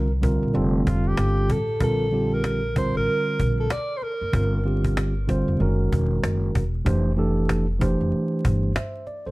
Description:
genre	hip hop, jazz-hop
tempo	95 BPM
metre	4/4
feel	swing 62% on 16ths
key	unclear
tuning	A4 = 440 Hz
part	mellow tine electric piano	accompaniment	0.0-9.3 s	D3 to E5	-24 LUFS	right 1 dB	plate reverb
part	upright bass	bass	0.0-9.3 s	E1 to C2	-24 LUFS	equal	none
part	cajon	drums	0.1-9.3 s	none	-26 LUFS	equal	none
part	mellow alto saxophone	melody	0.9-4.7 s	F4 to D5	-27 LUFS	right 1 dB	plate reverb, analog delay
room	light reverb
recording	dark, warm production, vinyl crackle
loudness	-20 LUFS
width	side -21 dB against mid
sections	0.0-9.3 A section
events	none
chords	0.0 Csus2; 0.5 Fadd9; 1.8 Bbmaj7; 4.3 Gm7; 5.6 F#9; 6.9 F69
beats	0.54 1.18 | 1.81 2.44 3.07 3.70 | 4.33 4.96 5.60 6.23 | 6.86 7.49 8.12 8.75

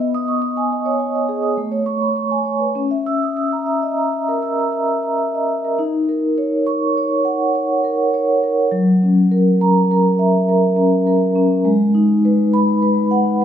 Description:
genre	classical, contemporary piece for solo vibraphone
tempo	102 BPM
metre	5/4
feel	rubato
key	unclear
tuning	A4 = 441 Hz
part	vibraphone with soft mallets	solo	0.0-13.4 s	F#3 to E6	-15 LUFS	equal	none
room	moderate recital hall reverb, RT60 1.4 s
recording	minimal, uncompressed stereo recording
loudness	-15 LUFS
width	side -9 dB against mid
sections	0.0-5.8 A section; 5.8-13.4 B section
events	none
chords	0.0 B69; 1.6 Amaj7; 2.8 C#m6; 5.8 D#m7; 8.7 F#7; 11.7 G#m7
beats	0.42 1.00 1.58 2.17 | 2.78 3.39 3.99 4.59 5.19 | 5.79 6.38 6.97 7.56 8.14 | 8.73 9.32 9.91 10.49 11.07 | 11.66 12.25 12.83 13.41

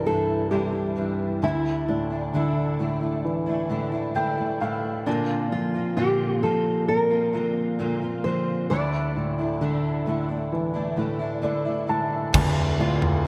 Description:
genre	pop ballad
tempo	66 BPM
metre	4/4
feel	straight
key	D minor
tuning	A4 = 440 Hz
part	nylon-string guitar	melody	0.0-13.3 s	D4 to D5	-29 LUFS	equal	none
part	warm upright piano	accompaniment	0.0-13.3 s	D1 to A5	-28 LUFS	equal	none
part	fingerpicked steel-string acoustic guitar	arpeggios	0.0-13.3 s	Bb2 to F4	-32 LUFS	equal	ensemble chorus, digital delay
part	modern studio drum kit	drums	12.3-13.2 s	crash cymbal, kick drum, toms	-26 LUFS	equal	gated reverb
room	moderate plate reverb, RT60 2.4 s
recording	bright 1980s-style digital production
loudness	-25 LUFS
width	mono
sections	0.0-12.3 A section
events	upright piano fill 3.7-5.1, 11.0-12.3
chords	0.0 Cadd9; 1.4 Dsus2; 5.1 Bbadd9; 8.7 Dsus2; 12.3 Dm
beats	0.52 | 1.43 2.34 3.25 4.16 | 5.07 5.98 6.88 7.79 | 8.70 9.61 10.52 11.43 | 12.34 13.25

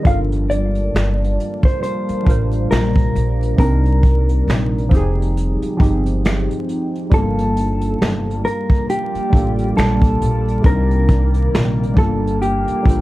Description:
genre	lo-fi hip hop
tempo	68 BPM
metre	4/4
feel	swing 59% on 16ths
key	G minor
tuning	A4 = 439 Hz
part	mellow electric guitar	melody	0.0-13.0 s	G4 to F5	-23 LUFS	left 1 dB	tremolo, low-pass filter
part	warm analog keys	accompaniment	0.0-13.0 s	C3 to C5	-22 LUFS	right 1 dB	chorus, phaser, low-pass filter
part	deep dark ambient pad	sustained chords	0.0-13.0 s	C3 to A5	-27 LUFS	equal	chorus, built-in reverb, low-pass filter
part	upright bass	bass	0.1-13.0 s	F1 to C2	-18 LUFS	equal	none
part	vintage brush drum kit	drums	0.1-13.0 s	finger snaps, hi-hat, kick drum, snare drum	-16 LUFS	equal	none
room	light reverb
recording	dark, warm production, vinyl crackle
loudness	-14 LUFS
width	side -17 dB against mid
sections	0.0-13.0 A section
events	none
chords	0.1 Gm9; 3.6 Cm9; 4.9 Fm9; 7.1 Gm9; 10.6 Cm9; 12.0 Gm9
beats	| 0.06 0.94 1.82 2.70 | 3.58 4.47 5.35 6.23 | 7.11 8.00 8.88 9.76 | 10.64 11.53 12.41

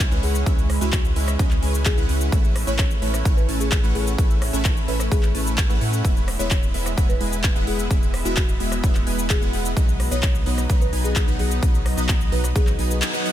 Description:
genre	EDM, festival progressive house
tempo	129 BPM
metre	4/4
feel	straight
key	E major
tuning	A4 = 439 Hz
part	lush unison pad	sustained chords	0.0-13.3 s	F#3 to E5	-31 LUFS	equal	chorus, phaser, sidechain pumping
part	supersaw stab	riff	0.0-13.3 s	F#3 to A5	-28 LUFS	right 1 dB	wide subtle chorus, sidechain pumping, tape echo
part	saturated sub bass	bass	0.0-13.0 s	E1 to A2	-24 LUFS	equal	tube saturation, sidechain pumping
part	big-room dance drum kit	drums	0.0-13.3 s	cabasa, handclaps, hi-hat, rim click	-28 LUFS	left 1 dB	none
part	electronic kick drum	drums	0.0-12.7 s	none	-20 LUFS	equal	none
part	folk marimba with soft mallets	melody	0.2-13.2 s	F#4 to C#5	-32 LUFS	left 2 dB	tape echo
room	light reverb, digital ambience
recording	none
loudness	-18 LUFS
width	side -12 dB against mid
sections	0.0-13.3 A section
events	band accent 13.0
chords	0.0 C#m7; 2.3 Aadd9; 6.0 E; 9.8 B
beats	0.00 | 0.46 0.93 1.39 1.86 | 2.32 2.79 3.25 3.72 | 4.18 4.65 5.12 5.58 | 6.04 6.51 6.98 7.44 | 7.91 8.37 8.84 9.30 | 9.77 10.23 10.70 11.16 | 11.63 12.09 12.56 13.02

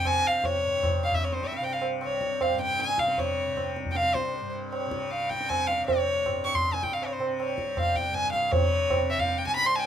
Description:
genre	indian classical, Hindustani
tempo	156 BPM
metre	7/4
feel	straight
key	unclear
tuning	A4 = 440 Hz
part	rich violin	melody	0.0-9.8 s	C5 to Db6	-26 LUFS	left 1 dB	none
part	tanpura	drone	0.0-9.9 s	C2 to C3	-35 LUFS	equal	none
part	tabla	percussion	0.1-9.8 s	none	-30 LUFS	right 2 dB	none
room	light reverb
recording	minimal, uncompressed stereo recording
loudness	-24 LUFS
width	side -9 dB against mid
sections	0.0-9.9 A section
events	speeding up 0.0-9.9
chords	none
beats	0.06 | 0.45 0.84 1.23 1.62 2.01 2.40 2.79 | 3.18 3.57 3.95 4.34 4.72 5.11 5.49 | 5.87 6.25 6.64 7.02 7.39 7.77 8.15 | 8.53 8.91 9.28 9.66

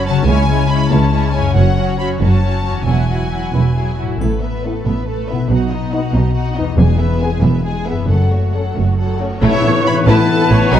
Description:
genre	cinematic, heroic adventure film score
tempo	92 BPM (dotted quarters)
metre	6/8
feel	straight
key	A lydian from 4.2 s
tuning	A4 = 442 Hz
part	warm symphonic violin section	melody	0.0-10.8 s	B4 to B5	-25 LUFS	left 3 dB	none
part	warm symphonic violin section	second line	0.0-10.8 s	A3 to F#5	-24 LUFS	left 2 dB	none
part	rich symphonic viola section	accompaniment	0.0-10.8 s	F#3 to C#5	-23 LUFS	right 2 dB	none
part	concert harp	arpeggios	0.0-10.8 s	E2 to B5	-20 LUFS	left 8 dB	none
part	dark symphonic cello section	bass	0.0-10.8 s	C#2 to B2	-19 LUFS	right 2 dB	none
part	rich symphonic double bass section	bass	0.0-10.8 s	E1 to C#2	-18 LUFS	right 2 dB	none
part	triangle, cymbal swell and tam-tam	percussion	4.2-10.8 s	none	-26 LUFS	left 1 dB	none
part	mellow French horn section	sustained chords	4.7-10.8 s	B3 to A4	-22 LUFS	left 2 dB	none
part	timpani	percussion	6.8-7.4 s	E2	-21 LUFS	left 2 dB	none
part	warm trumpet section	stabs	9.4-10.8 s	B4	-21 LUFS	equal	none
room	moderate scoring stage reverb, RT60 1.6 s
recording	dark, warm production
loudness	-13 LUFS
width	side -10 dB against mid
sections	0.0-4.2 A section; 4.2-9.4 B section; 9.4-10.8 C section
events	band accent 9.4-9.9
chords	0.3 C#m; 1.6 F#m; 2.9 Eadd9; 4.2 Asus2; 5.5 B; 6.8 E; 8.1 F#m; 9.4 Asus2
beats	| 0.28 0.92 | 1.56 2.22 | 2.88 3.55 | 4.21 4.86 | 5.50 6.14 | 6.78 7.43 | 8.09 8.77 | 9.43 10.07 | 10.72

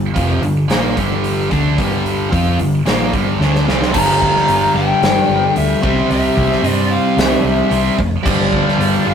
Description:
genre	hard rock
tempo	111 BPM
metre	4/4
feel	straight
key	G dorian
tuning	A4 = 439 Hz
part	sludgy distorted guitar	riff	0.0-9.1 s	F2 to F4	-19 LUFS	left 5 dB	overdrive
part	tight distorted guitar	riff	0.0-9.1 s	F2 to F4	-19 LUFS	right 6 dB	distortion
part	hollow-body short-scale fingered electric bass	bass	0.0-9.1 s	F1 to G2	-20 LUFS	equal	none
part	big rock drum kit	drums	0.2-8.9 s	crash cymbal, hi-hat, kick drum, snare drum	-19 LUFS	right 1 dB	none
part	lead guitar through a small cranked amp	melody	3.9-9.1 s	D5 to Bb5	-18 LUFS	left 2 dB	overdrive
room	moderate studio reverb, RT60 0.7 s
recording	rough rehearsal-room recording, tube saturation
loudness	-13 LUFS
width	side -7 dB against mid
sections	0.0-3.9 A section; 3.9-9.1 B section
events	drum fill 3.4-3.9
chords	0.0 Gm; 5.8 C; 8.3 G5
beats	0.15 0.69 1.24 | 1.78 2.32 2.86 3.40 | 3.94 4.48 5.02 5.56 | 6.10 6.64 7.18 7.72 | 8.26 8.80

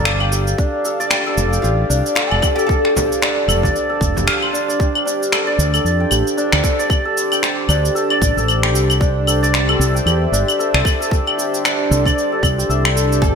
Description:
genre	organic downtempo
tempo	114 BPM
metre	4/4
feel	swing 58% on 16ths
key	unclear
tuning	A4 = 438 Hz
part	warm analog pad	sustained chords	0.0-13.3 s	D4 to F5	-23 LUFS	right 1 dB	chorus, sidechain pumping
part	santur	arpeggios	0.0-13.3 s	D4 to G5	-20 LUFS	left 1 dB	digital delay
part	mellow fretless electric bass	bass	0.0-13.3 s	F1 to F2	-18 LUFS	equal	sidechain pumping
part	electronic finger snaps, shaker and claves	drums	0.1-13.3 s	none	-20 LUFS	left 1 dB	gated reverb
part	electronic kick drum	drums	0.6-13.3 s	none	-18 LUFS	equal	none
part	oud	melody	1.1-4.2, 13.2-13.3 s	F4 to A4	-21 LUFS	equal	digital delay
part	frame drum	percussion	3.0-4.3 s	none	-27 LUFS	left 2 dB	none
room	moderate lush hall reverb, RT60 1.6 s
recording	bright 1980s-style digital production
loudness	-14 LUFS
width	side -6 dB against mid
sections	0.0-4.8 A section; 4.8-13.3 B section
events	none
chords	0.0 G7(no3); 0.6 F; 4.8 Dm; 9.0 C6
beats	0.06 | 0.59 1.11 1.64 2.17 | 2.69 3.22 3.75 4.27 | 4.80 5.33 5.85 6.38 | 6.91 7.43 7.96 8.48 | 9.01 9.54 10.06 10.59 | 11.12 11.64 12.17 12.69 | 13.22

